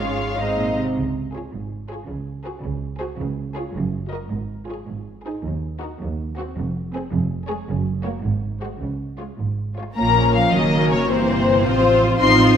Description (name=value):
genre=quick classical-period movement for string orchestra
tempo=107 BPM (dotted quarters)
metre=6/8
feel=straight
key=Db major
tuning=A4 = 440 Hz
part: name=warm symphonic violin section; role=melody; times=0.0-12.6 s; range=Bb4 to C6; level=-22 LUFS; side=left 6 dB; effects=none
part: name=warm symphonic violin section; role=second line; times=0.0-12.6 s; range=C4 to Eb5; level=-23 LUFS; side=left 3 dB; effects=none
part: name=dark symphonic viola section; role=accompaniment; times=0.0-12.6 s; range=E3 to Gb4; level=-25 LUFS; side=equal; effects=none
part: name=clear symphonic double bass section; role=bass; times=0.0-12.6 s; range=F1 to Eb2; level=-26 LUFS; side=right 3 dB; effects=none
part: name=warm symphonic cello section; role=bass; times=0.0-12.5 s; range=Eb2 to C4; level=-26 LUFS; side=right 3 dB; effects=none
room=moderate scoring stage reverb, RT60 1.6 s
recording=none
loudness=-19 LUFS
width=side -8 dB against mid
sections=1.0-10.0 A section; 10.0-12.6 B section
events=none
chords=0.4 Ab; 1.0 Db; 2.1 Ab7/Db; 3.2 Db; 3.8 Ebm/Gb; 4.3 Db/Ab; 4.9 Ab; 5.5 Ebm; 6.0 Cdim/Eb; 6.6 Fm; 7.1 Db/F; 7.7 Gb; 8.3 Ab7; 8.8 Db; 10.0 Bbm; 10.5 Gb; 11.1 C7/G; 11.6 F/A